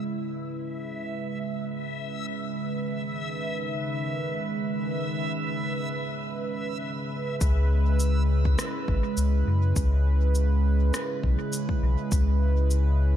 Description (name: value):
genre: ambient dub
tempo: 102 BPM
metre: 4/4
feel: swing 54% on 16ths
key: C# minor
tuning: A4 = 439 Hz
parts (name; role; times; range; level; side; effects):
- warm analog pad; sustained chords; 0.0-13.2 s; C#3 to C#5; -30 LUFS; right 2 dB; chorus
- backwards swelling texture; texture; 0.0-7.4 s; E5; -35 LUFS; equal; built-in reverb
- warm sub bass; bass; 7.4-13.2 s; G#1 to F#2; -22 LUFS; left 1 dB; none
- electronic cabasa and rim click; drums; 7.4-12.8 s; none; -35 LUFS; left 1 dB; dub echo
- electronic kick drum; drums; 7.4-12.2 s; none; -27 LUFS; left 1 dB; none
room: light reverb, digital ambience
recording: none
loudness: -24 LUFS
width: side -11 dB against mid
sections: 0.0-7.4 A section; 7.4-13.2 B section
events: none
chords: 0.0 C#m7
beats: | 0.35 0.94 1.53 2.12 | 2.71 3.29 3.88 4.47 | 5.06 5.65 6.24 6.82 | 7.41 8.00 8.59 9.18 | 9.77 10.35 10.94 11.53 | 12.12 12.71